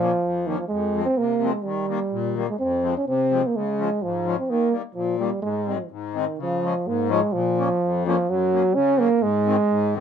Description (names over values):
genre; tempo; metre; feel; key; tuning
alpine folk; 127 BPM; 2/4; straight; Ab major, Db major from 6.4 s; A4 = 441 Hz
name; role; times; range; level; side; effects
mellow euphonium; melody; 0.0-10.0 s; Eb3 to Db4; -21 LUFS; right 2 dB; none
accordion; accompaniment; 0.0-10.0 s; F2 to Db4; -27 LUFS; left 8 dB; none
room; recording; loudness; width
moderate small room ambience, RT60 0.5 s; minimal, uncompressed stereo recording; -20 LUFS; side -7 dB against mid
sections
0.0-6.4 A section; 6.4-10.0 B section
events
none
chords
0.0 Bbm; 0.7 Fm; 1.6 Eb; 2.6 Fm; 3.5 Db; 4.5 Eb; 5.4 Ab; 6.4 Db; 7.3 Bbm; 8.3 Gb; 9.2 Ab